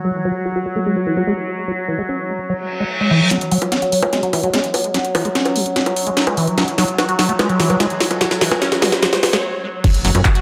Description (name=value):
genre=psychedelic trance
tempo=147 BPM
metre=4/4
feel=straight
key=unclear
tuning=A4 = 440 Hz
part: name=overtone-sweeping drone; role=sustained chords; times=0.0-10.4 s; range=F#3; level=-25 LUFS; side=equal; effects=chorus, built-in reverb, phaser, sidechain pumping
part: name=liquid acid bass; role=riff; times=0.0-10.4 s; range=E3 to F#4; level=-23 LUFS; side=equal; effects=phaser, sidechain pumping, tape echo
part: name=reverse cymbal, riser and impact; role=sound effects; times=2.7-10.4 s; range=none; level=-28 LUFS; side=equal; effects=none
part: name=drum and bass drum kit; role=drums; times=3.3-10.4 s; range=bongos, crash cymbal, handclaps, hi-hat, snare drum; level=-20 LUFS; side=equal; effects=overdrive
part: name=electronic kick drum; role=drums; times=9.8-10.3 s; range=none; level=-16 LUFS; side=equal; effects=none
part: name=plucky analog bass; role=bass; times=10.0-10.2 s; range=F#1 to F#2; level=-17 LUFS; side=equal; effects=tube saturation
room=wet plate reverb, RT60 1.2 s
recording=dreamy mix soaked in reverb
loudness=-18 LUFS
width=mono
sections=0.0-3.3 A section; 3.3-9.8 B section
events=reverse cymbal 2.7-3.3; build-up 3.3-9.8; drum fill 3.3-9.4; filter sweep on acid bass 3.3-9.8; filter sweep on synth drone 3.3-9.8; break 9.4-9.8; impact 9.8-10.4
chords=0.0 F#5